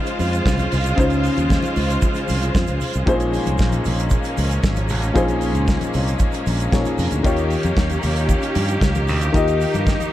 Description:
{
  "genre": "disco",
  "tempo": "115 BPM",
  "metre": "4/4",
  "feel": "straight",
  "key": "unclear",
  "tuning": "A4 = 441 Hz",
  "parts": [
    { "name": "warm grand piano", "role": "accompaniment", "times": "0.0-10.1 s", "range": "Bb2 to Eb5", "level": "-23 LUFS", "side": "left 3 dB", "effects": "none" },
    { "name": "bright studio string section", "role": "sustained chords", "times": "0.0-10.1 s", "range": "Db3 to C5", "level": "-24 LUFS", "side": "right 1 dB", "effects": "none" },
    { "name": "damped 70s drum kit", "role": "drums", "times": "0.1-10.1 s", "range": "hi-hat, kick drum, snare drum", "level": "-22 LUFS", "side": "equal", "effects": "none" },
    { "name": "egg shaker", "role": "percussion", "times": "0.1-10.1 s", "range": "none", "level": "-40 LUFS", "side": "right 20 dB", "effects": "none" },
    { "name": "fingered electric bass", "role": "bass", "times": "0.2-9.9 s", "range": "Ab1 to Bb2", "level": "-21 LUFS", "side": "equal", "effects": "none" },
    { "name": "congas", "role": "percussion", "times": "0.2-10.1 s", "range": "none", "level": "-31 LUFS", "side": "left 3 dB", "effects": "none" }
  ],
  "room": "light reverb",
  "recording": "dark, warm production",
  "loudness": "-17 LUFS",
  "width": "side -13 dB against mid",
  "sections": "0.0-10.1 A section",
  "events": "none",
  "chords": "0.0 Dbmaj7; 3.1 Bbm11; 7.2 Eb7"
}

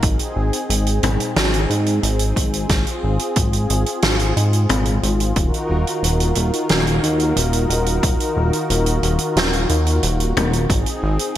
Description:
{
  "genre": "synthwave",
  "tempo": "90 BPM",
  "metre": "4/4",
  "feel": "straight",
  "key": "Eb dorian",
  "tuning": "A4 = 440 Hz",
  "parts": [
    { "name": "brassy analog pad", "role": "sustained chords", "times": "0.0-11.4 s", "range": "Eb3 to Bb4", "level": "-22 LUFS", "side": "left 1 dB", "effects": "chorus, sidechain pumping" },
    { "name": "chorused synth bass", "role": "bass", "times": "0.0-11.2 s", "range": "Eb1 to Ab2", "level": "-19 LUFS", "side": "equal", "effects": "sidechain pumping" },
    { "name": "electronic kick drum", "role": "drums", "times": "0.0-10.8 s", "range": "none", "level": "-20 LUFS", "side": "equal", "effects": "none" },
    { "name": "vintage drum kit", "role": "drums", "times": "0.0-11.4 s", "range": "hi-hat, snare drum, toms", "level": "-22 LUFS", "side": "right 1 dB", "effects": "gated reverb" }
  ],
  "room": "light reverb, small room ambience",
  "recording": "bright 1980s-style digital production",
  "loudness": "-16 LUFS",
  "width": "side -12 dB against mid",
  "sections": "0.0-11.4 A section",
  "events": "none",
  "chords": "0.0 Ab; 5.4 Ebmadd9; 10.7 Ab"
}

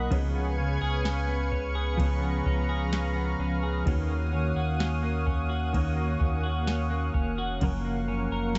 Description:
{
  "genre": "dream pop",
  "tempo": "64 BPM",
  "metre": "4/4",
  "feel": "straight",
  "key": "unclear",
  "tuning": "A4 = 440 Hz",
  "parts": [
    { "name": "mellow electric guitar", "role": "accompaniment", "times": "0.0-8.6 s", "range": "F#2 to A#4", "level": "-36 LUFS", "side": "equal", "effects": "tremolo, analog chorus" },
    { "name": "lush unison pad", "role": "sustained chords", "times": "0.0-8.6 s", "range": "A#3 to D#6", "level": "-36 LUFS", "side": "equal", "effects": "chorus" },
    { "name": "semi-hollow electric guitar", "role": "arpeggios", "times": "0.0-8.6 s", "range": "F#2 to A#4", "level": "-35 LUFS", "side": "equal", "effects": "lush chorus, tape echo" },
    { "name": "warm sub bass", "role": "bass", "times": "0.0-8.6 s", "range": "E#1 to D#2", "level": "-32 LUFS", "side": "equal", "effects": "none" },
    { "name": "soft vintage rhythm box", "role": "drums", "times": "0.1-8.6 s", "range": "kick drum, ride cymbal, snare drum, tambourine", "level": "-32 LUFS", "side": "equal", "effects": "none" }
  ],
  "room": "light reverb",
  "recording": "dark, warm production, nothing above 7.9 kHz",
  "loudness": "-28 LUFS",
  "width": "mono",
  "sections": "0.0-8.6 A section",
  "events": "none",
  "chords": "0.1 C#7; 3.9 D#m9; 7.6 F#maj7"
}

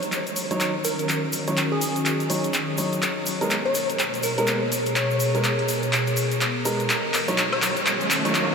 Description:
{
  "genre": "bass house",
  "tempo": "124 BPM",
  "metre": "4/4",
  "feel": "swing 60% on 16ths",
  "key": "Eb minor",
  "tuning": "A4 = 435 Hz",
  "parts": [
    { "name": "sweeping resonant pad", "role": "sustained chords", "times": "0.0-8.5 s", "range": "Cb3 to Ab4", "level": "-28 LUFS", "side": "left 1 dB", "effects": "chorus" },
    { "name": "big-room dance drum kit", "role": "drums", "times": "0.0-8.5 s", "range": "handclaps, hi-hat, woodblock", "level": "-25 LUFS", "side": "equal", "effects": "high-pass filter on hats, high-pass filter on snare, high-pass filter on perc" },
    { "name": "tube shaker", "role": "percussion", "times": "0.0-8.5 s", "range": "none", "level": "-34 LUFS", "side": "left 1 dB", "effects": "none" },
    { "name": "dark baby grand piano", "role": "stabs", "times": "0.5-8.4 s", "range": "Gb3 to Db5", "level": "-27 LUFS", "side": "right 1 dB", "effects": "low-pass filter, tape echo" },
    { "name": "glassy wavetable pluck", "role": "melody", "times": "0.8-7.6 s", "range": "Ab4 to Db5", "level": "-29 LUFS", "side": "left 1 dB", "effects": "chorus, tape echo" },
    { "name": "riser", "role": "sound effects", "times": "7.2-8.5 s", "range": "none", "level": "-30 LUFS", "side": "right 2 dB", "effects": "none" }
  ],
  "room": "wet huge ambient reverb, RT60 7.6 s",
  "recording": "dreamy mix soaked in reverb, high-pass filter",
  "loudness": "-21 LUFS",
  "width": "side -5 dB against mid",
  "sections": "0.0-8.5 A section",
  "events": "build-up 0.0-8.5; drum fill 0.0-8.5; filter sweep on analog synth pad 0.0-8.5; riser 7.2-8.5",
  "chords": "0.0 Ebm7; 3.0 Abmadd9; 6.9 Ebm7"
}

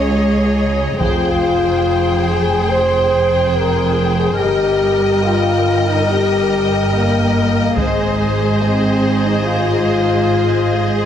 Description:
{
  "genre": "cinematic, epic orchestral film score",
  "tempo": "71 BPM",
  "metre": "4/4",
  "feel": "straight",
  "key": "F minor",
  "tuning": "A4 = 440 Hz",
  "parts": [
    { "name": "warm symphonic violin section", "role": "melody", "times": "0.0-11.1 s", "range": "Eb5 to G5", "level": "-25 LUFS", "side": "left 3 dB", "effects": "none" },
    { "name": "warm symphonic violin section", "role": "second line", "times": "0.0-11.1 s", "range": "C5 to Eb5", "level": "-23 LUFS", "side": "left 3 dB", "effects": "none" },
    { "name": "rich studio viola section", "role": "accompaniment", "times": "0.0-11.1 s", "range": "Ab4 to Bb4", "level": "-23 LUFS", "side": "left 1 dB", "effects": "none" },
    { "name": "mellow French horn section", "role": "sustained chords", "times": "0.0-11.0 s", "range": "Ab3 to C5", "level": "-17 LUFS", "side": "left 2 dB", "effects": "none" },
    { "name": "rich symphonic cello section", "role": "bass", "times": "0.0-11.1 s", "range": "Db2 to Ab2", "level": "-21 LUFS", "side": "right 2 dB", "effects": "none" },
    { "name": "rich symphonic double bass section", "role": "bass", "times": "0.0-11.1 s", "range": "F1 to Db2", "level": "-21 LUFS", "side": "right 3 dB", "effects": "none" },
    { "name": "taiko ensemble", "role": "drums", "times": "1.0-2.7, 7.8-9.4 s", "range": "none", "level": "-23 LUFS", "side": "right 1 dB", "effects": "none" }
  ],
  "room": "moderate scoring stage reverb, RT60 1.7 s",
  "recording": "heavily compressed radio sound, multiband compression",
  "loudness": "-13 LUFS",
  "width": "side -9 dB against mid",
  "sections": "0.0-11.1 A section",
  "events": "none",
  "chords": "0.0 Dbsus2; 1.0 Fmadd9; 4.4 Eb/G; 7.8 Ab"
}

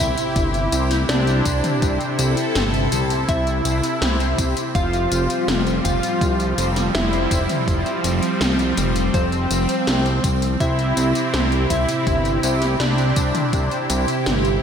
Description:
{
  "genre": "synthwave",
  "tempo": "82 BPM",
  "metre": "4/4",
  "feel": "straight",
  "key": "unclear",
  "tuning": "A4 = 440 Hz",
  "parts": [
    { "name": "soft supersaw", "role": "melody", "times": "0.0-13.8 s", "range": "C4 to F4", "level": "-25 LUFS", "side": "equal", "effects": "analog delay" },
    { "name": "soft synth bell", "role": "second line", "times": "0.0-13.8 s", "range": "C5 to F5", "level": "-31 LUFS", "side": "left 2 dB", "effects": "none" },
    { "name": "phased analog pad", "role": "sustained chords", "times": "0.0-14.6 s", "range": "C3 to A4", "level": "-24 LUFS", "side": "right 1 dB", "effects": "phaser, chorus, sidechain pumping" },
    { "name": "mellow synth brass", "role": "stabs", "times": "0.0-14.6 s", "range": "C3 to C5", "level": "-28 LUFS", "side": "left 1 dB", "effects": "chorus, ping-pong delay" },
    { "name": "fat analog bass", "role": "bass", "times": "0.0-14.6 s", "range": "F1 to C2", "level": "-22 LUFS", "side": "equal", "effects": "none" },
    { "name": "impact", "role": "sound effects", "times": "0.2-1.8 s", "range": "none", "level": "barely audible", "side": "none", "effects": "none" },
    { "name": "80s electronic pad drums", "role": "drums", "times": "0.2-14.6 s", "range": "hi-hat, snare drum, tambourine, toms", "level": "-25 LUFS", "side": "left 1 dB", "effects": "gated reverb on snare and toms, overdrive" },
    { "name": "electronic kick drum", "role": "drums", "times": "0.4-13.7 s", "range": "none", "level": "-23 LUFS", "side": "equal", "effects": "none" }
  ],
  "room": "wet lush hall reverb, RT60 3.0 s",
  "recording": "dreamy mix soaked in reverb",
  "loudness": "-17 LUFS",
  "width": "side -7 dB against mid",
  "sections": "0.0-14.6 A section",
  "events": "impact 0.0-1.8",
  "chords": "0.0 C; 4.8 Fsus2; 10.6 C"
}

